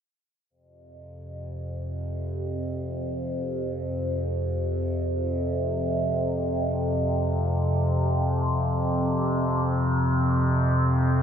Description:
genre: world meditative, free-time meditation music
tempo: free time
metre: none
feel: none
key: unclear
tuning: A4 = 438 Hz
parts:
  - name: overtone-sweeping drone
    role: solo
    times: 1.1-11.2 s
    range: F2 to C3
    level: -24 LUFS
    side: equal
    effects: chorus, built-in reverb, phaser, diffuse ambient delay
room: wet cathedral reverb, RT60 7.0 s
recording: in a vast, echoing space, nothing above 7.8 kHz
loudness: -24 LUFS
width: side -8 dB against mid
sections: 0.5-11.2 A section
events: none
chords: none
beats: free time

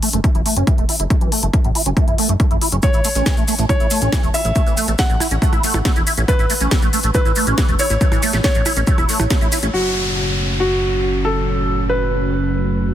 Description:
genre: uplifting trance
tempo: 139 BPM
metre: 4/4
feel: straight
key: unclear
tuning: A4 = 440 Hz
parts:
  - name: liquid acid bass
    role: arpeggios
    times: 0.0-9.7 s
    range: A2 to E4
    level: -22 LUFS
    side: right 2 dB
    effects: phaser, ensemble chorus, sidechain pumping, tape echo
  - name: techno drum kit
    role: drums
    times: 0.0-9.7 s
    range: hi-hat, percussion blips, snare drum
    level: -23 LUFS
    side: equal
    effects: none
  - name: fat analog bass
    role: bass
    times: 0.1-12.9 s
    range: E1 to A1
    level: -21 LUFS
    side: equal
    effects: sidechain pumping
  - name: electronic kick drum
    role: drums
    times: 0.2-9.4 s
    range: none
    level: -17 LUFS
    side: equal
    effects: none
  - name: warm concert grand piano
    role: second line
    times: 2.8-12.9 s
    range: F#4 to F#5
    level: -22 LUFS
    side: equal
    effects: tape echo
  - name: maracas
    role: percussion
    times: 2.8-9.7 s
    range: none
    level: -27 LUFS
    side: right 1 dB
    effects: none
  - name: lush unison pad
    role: sustained chords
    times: 9.7-12.9 s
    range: A2 to F#4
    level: -23 LUFS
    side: right 2 dB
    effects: chorus, vintage 12-bit sampler grit, sidechain pumping
  - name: downlifter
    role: sound effects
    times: 9.7-12.9 s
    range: none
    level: -25 LUFS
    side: equal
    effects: none
room: little or no reverb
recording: dense, heavily limited modern master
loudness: -14 LUFS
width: side -11 dB against mid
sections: 0.0-9.7 A section; 9.7-12.9 B section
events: filter sweep on acid bass 0.0-9.7; band accent 9.3; filter sweep on analog synth pad 9.7-12.9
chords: 0.0 F#m; 2.8 A; 9.7 F#m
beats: 0.24 0.67 | 1.10 1.54 1.97 2.40 | 2.83 3.26 3.69 4.13 | 4.56 4.99 5.42 5.85 | 6.28 6.72 7.15 7.58 | 8.01 8.44 8.87 9.31 | 9.74 10.17 10.60 11.03 | 11.46 11.89 12.33 12.76

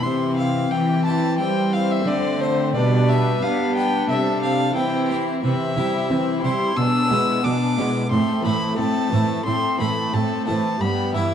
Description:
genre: classical, baroque-style concerto movement with solo episodes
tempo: 89 BPM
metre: 4/4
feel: straight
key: unclear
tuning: A4 = 440 Hz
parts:
  - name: rich chamber violin section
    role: melody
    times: 0.0-11.3 s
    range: E4 to C5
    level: -31 LUFS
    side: left 6 dB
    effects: none
  - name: warm violin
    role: melody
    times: 0.0-11.3 s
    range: C5 to E6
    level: -25 LUFS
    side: left 1 dB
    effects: none
  - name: warm chamber violin section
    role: second line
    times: 0.0-11.3 s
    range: A3 to E4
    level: -26 LUFS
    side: left 5 dB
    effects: none
  - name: dark chamber viola section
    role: accompaniment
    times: 0.0-11.3 s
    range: E3 to B3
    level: -26 LUFS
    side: equal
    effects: none
  - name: harpsichord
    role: accompaniment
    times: 0.0-11.3 s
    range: G2 to G#4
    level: -28 LUFS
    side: right 1 dB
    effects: none
  - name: dark chamber cello section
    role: bass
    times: 0.0-11.2 s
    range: G2 to C4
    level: -24 LUFS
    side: right 2 dB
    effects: none
room: wet recital hall reverb, RT60 1.4 s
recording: dark, warm production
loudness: -18 LUFS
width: side -8 dB against mid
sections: 0.0-11.3 A section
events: none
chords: 0.0 C; 2.7 G/B; 4.1 C; 6.8 E7/B; 8.1 Am; 10.8 Em/G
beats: | 0.04 0.71 1.39 2.07 | 2.75 3.42 4.09 4.76 | 5.44 6.11 6.77 7.44 | 8.11 8.78 9.46 10.13 | 10.81

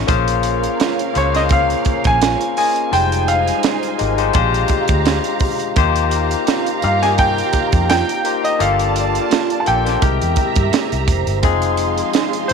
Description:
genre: lush 1970s-style soul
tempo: 85 BPM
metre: 4/4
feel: swing 54% on 16ths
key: Bb minor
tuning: A4 = 438 Hz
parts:
  - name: muted studio string section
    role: second line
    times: 0.0-12.5 s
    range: Db4 to C6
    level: -24 LUFS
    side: right 11 dB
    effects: none
  - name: barky tine electric piano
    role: accompaniment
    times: 0.0-12.5 s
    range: G3 to Eb5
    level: -20 LUFS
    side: left 14 dB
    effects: none
  - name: string machine, full ensemble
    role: sustained chords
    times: 0.0-0.1, 11.4-12.5 s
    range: F3 to Ab4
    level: -34 LUFS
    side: equal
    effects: phaser, ensemble chorus
  - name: vintage muted fingered electric bass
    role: bass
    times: 0.0-12.5 s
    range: F1 to G2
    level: -20 LUFS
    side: equal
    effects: none
  - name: tight funk drum kit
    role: drums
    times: 0.1-12.5 s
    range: hi-hat, kick drum, snare drum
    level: -20 LUFS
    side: right 4 dB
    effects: none
  - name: vibraphone with hard mallets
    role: texture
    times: 0.5-2.9, 11.1-11.8 s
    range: Bb4 to C5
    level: -31 LUFS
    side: right 13 dB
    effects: none
  - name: electric guitar through a small old amp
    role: riff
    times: 0.8-12.3 s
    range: Ab3 to A4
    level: -26 LUFS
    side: right 15 dB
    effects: ensemble chorus
  - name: clear grand piano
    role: melody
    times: 1.2-12.5 s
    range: C5 to A5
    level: -19 LUFS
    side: right 1 dB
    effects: tape echo
room: light reverb, small room ambience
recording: 1960s-style stereo with parts hard left and right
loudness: -14 LUFS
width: side -6 dB against mid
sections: 0.1-12.5 A section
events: none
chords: 0.1 Bbm7; 2.9 Fm9; 4.4 Bb13; 5.8 Eb69; 8.6 Gm9; 10.0 C7b13; 11.4 Fm7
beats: | 0.09 0.80 1.51 2.22 | 2.93 3.64 4.35 5.06 | 5.77 6.48 7.19 7.89 | 8.60 9.31 10.02 10.73 | 11.44 12.15

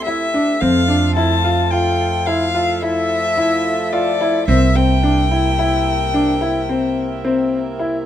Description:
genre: contemporary instrumental, chamber music in an uneven meter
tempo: 109 BPM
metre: 7/4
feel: straight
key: unclear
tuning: A4 = 440 Hz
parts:
  - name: dark violin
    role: melody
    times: 0.0-7.8 s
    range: D5 to A5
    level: -20 LUFS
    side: left 5 dB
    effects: none
  - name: pedal harmonium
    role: sustained chords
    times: 0.0-8.1 s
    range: C3 to F4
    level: -24 LUFS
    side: right 2 dB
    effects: none
  - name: upright bass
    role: bass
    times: 0.0-8.1 s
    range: C2 to F2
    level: -20 LUFS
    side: right 3 dB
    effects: none
  - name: warm baby grand piano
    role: arpeggios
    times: 0.1-8.0 s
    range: C4 to F4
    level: -18 LUFS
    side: left 1 dB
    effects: none
room: light reverb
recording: close, detailed microphones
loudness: -14 LUFS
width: side -10 dB against mid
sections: 0.0-8.1 A section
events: none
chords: 0.0 C; 0.6 Fmaj7; 4.5 C7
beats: 0.07 | 0.62 1.17 1.72 2.27 2.83 3.38 3.93 | 4.48 5.03 5.59 6.14 6.69 7.24 7.80

